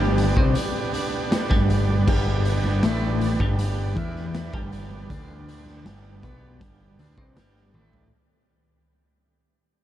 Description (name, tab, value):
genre	psychedelic rock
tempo	79 BPM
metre	4/4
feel	straight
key	G major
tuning	A4 = 444 Hz
part	combo organ	sustained chords	0.0-8.1 s	B3 to G4	-31 LUFS	right 4 dB	none
part	twelve-string electric guitar	riff	0.0-8.1 s	G2 to E4	-26 LUFS	left 1 dB	harmonic tremolo
part	growling picked electric bass	bass	0.0-8.1 s	G1 to E2	-26 LUFS	equal	overdrive
part	raw garage drum kit	drums	0.2-8.1 s	crash cymbal, hi-hat, kick drum, snare drum, toms	-26 LUFS	equal	none
part	congas	percussion	0.2-8.1 s	none	-38 LUFS	right 2 dB	none
room	moderate huge ambient reverb, RT60 7.8 s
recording	dreamy mix soaked in reverb, cassette tape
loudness	-20 LUFS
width	side -12 dB against mid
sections	0.0-8.1 A section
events	fade-out 0.0-8.1; drum fill 7.7-8.1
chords	0.0 G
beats	0.56 1.31 | 2.07 2.83 3.58 4.34 | 5.10 5.85 6.61 7.37